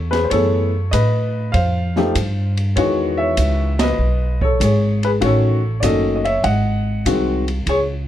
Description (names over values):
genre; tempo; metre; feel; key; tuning
jazz piano trio; 98 BPM; 4/4; swing 69% on 8ths; unclear; A4 = 440 Hz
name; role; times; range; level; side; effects
warm baby grand piano; melody; 0.0-7.8 s; D#3 to F#5; -19 LUFS; left 2 dB; none
upright bass; bass; 0.0-8.1 s; F#1 to A2; -19 LUFS; equal; none
open jazz drum kit; drums; 0.1-7.9 s; hi-hat, kick drum, ride cymbal, snare drum; -26 LUFS; right 2 dB; none
room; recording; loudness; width
little or no reverb; close, detailed microphones; -15 LUFS; side -12 dB against mid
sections
0.0-8.1 A section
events
band accent 3.7-4.0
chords
0.3 F#m11; 1.5 Fsus2; 2.8 Emaj9; 5.2 D#m7b5; 6.4 G#7